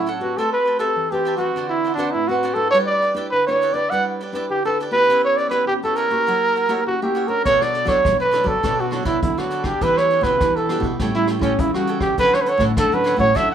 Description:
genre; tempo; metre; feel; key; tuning
samba and choro; 102 BPM; 4/4; straight; D major; A4 = 439 Hz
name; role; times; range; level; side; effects
mellow trumpet; melody; 0.0-13.5 s; C#4 to F#5; -18 LUFS; right 2 dB; plate reverb
cavaquinho; accompaniment; 0.0-13.5 s; D4 to A5; -29 LUFS; right 7 dB; plate reverb
nylon-string guitar; accompaniment; 0.0-13.5 s; A2 to C#5; -28 LUFS; left 4 dB; plate reverb
nylon-string guitar; bass; 7.5-13.5 s; A2 to F#3; -25 LUFS; right 1 dB; none
vintage brush drum kit; drums; 7.5-13.5 s; hi-hat, kick drum, rim click; -26 LUFS; equal; none
room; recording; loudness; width
moderate studio ambience, RT60 0.5 s; rough home demo mix, small room ambience; -17 LUFS; side -9 dB against mid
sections
0.0-13.5 A section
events
none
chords
0.4 Am9; 1.6 D13; 2.7 G6; 5.1 C#m7b5; 6.3 F#7b9; 7.5 Bm9; 9.8 Em7; 11.0 A7; 12.2 Dmaj9

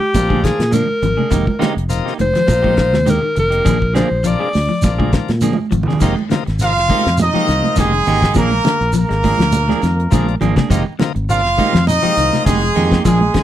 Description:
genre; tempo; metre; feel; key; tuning
afrobeat; 102 BPM; 4/4; swing 54% on 16ths; F dorian; A4 = 438 Hz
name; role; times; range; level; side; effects
bright alto saxophone; melody; 0.0-5.1 s; G4 to D5; -17 LUFS; left 1 dB; none
semi-hollow electric guitar; arpeggios; 0.0-13.4 s; C3 to Ab3; -22 LUFS; left 7 dB; none
clean electric guitar; stabs; 0.0-13.4 s; F3 to Ab4; -22 LUFS; right 7 dB; slapback echo
bright tonewheel organ; accompaniment; 0.1-12.5 s; C3 to Eb4; -24 LUFS; left 10 dB; none
fingered electric bass; bass; 0.1-13.3 s; F1 to Bb2; -18 LUFS; equal; none
damped 70s drum kit; drums; 0.1-13.4 s; crash cymbal, hi-hat, kick drum, snare drum; -19 LUFS; left 1 dB; none
shekere; percussion; 0.1-13.4 s; none; -26 LUFS; right 2 dB; none
congas; percussion; 0.2-13.4 s; none; -21 LUFS; right 4 dB; none
brilliant horn section; melody; 6.6-13.4 s; Ab4 to F5; -17 LUFS; right 1 dB; none
trombone with metal mute; second line; 6.6-13.4 s; Ab3 to F4; -24 LUFS; right 6 dB; none
room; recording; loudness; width
light reverb; dry, close 1970s-style studio recording; -13 LUFS; side -12 dB against mid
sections
0.0-6.0 A section; 6.0-13.4 B section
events
alto saxophone solo 0.0-6.0; drum fill 5.4-6.0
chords
0.0 Bb7; 1.3 Fm11; 3.7 Bb7; 6.0 Fm11; 8.4 Bb7; 10.7 Fm11

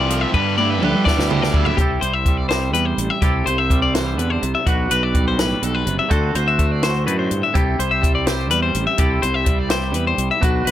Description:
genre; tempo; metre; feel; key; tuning
math rock and midwest emo; 83 BPM (dotted quarters); 6/8; straight; unclear; A4 = 440 Hz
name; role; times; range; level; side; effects
twangy electric guitar; accompaniment; 0.0-10.7 s; G2 to C5; -24 LUFS; right 7 dB; wide subtle chorus
clean electric guitar; arpeggios; 0.0-10.7 s; F#4 to E5; -21 LUFS; left 6 dB; analog delay
overdriven electric guitar; riff; 0.0-1.8 s; G2 to G4; -22 LUFS; right 1 dB; none
fuzz fingered electric bass; bass; 0.0-10.7 s; F#1 to G3; -22 LUFS; equal; overdrive
compact cocktail drum kit; drums; 0.1-10.7 s; hi-hat, kick drum, snare drum, toms; -20 LUFS; equal; none
room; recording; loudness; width
little or no reverb; none; -16 LUFS; side -12 dB against mid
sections
0.0-1.8 A section; 1.8-10.7 B section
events
drum fill 0.3-1.8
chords
0.3 G69; 1.8 C6; 4.7 Gmaj7/B; 6.1 D7; 7.5 C6

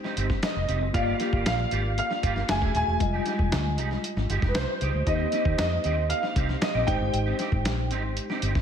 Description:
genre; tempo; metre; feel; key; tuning
polished 1980s jazz-funk pop; 116 BPM; 4/4; straight; unclear; A4 = 440 Hz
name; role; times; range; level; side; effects
tine electric piano; accompaniment; 0.0-8.6 s; G3 to Fb5; -32 LUFS; left 3 dB; medium stereo tremolo, analog chorus
electric guitar at the edge of break-up; riff; 0.0-8.6 s; Ab3 to Ab4; -34 LUFS; right 5 dB; ensemble chorus
dusty soul sampler-style drum kit; drums; 0.0-8.6 s; hi-hat, kick drum, snare drum; -29 LUFS; equal; none
vintage muted fingered electric bass; bass; 0.2-8.6 s; Eb1 to F2; -28 LUFS; equal; none
clear concert grand piano; melody; 0.4-7.9 s; Cb5 to Ab5; -29 LUFS; right 1 dB; ensemble chorus, ping-pong delay
room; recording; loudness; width
moderate lush hall reverb, RT60 1.7 s, digital ambience; dreamy mix soaked in reverb; -23 LUFS; side -8 dB against mid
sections
0.0-8.6 A section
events
none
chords
0.0 Abmaj7; 0.9 Gm7; 2.5 Gbm9; 3.0 Fm9; 5.1 Eb6; 6.9 Abmaj7

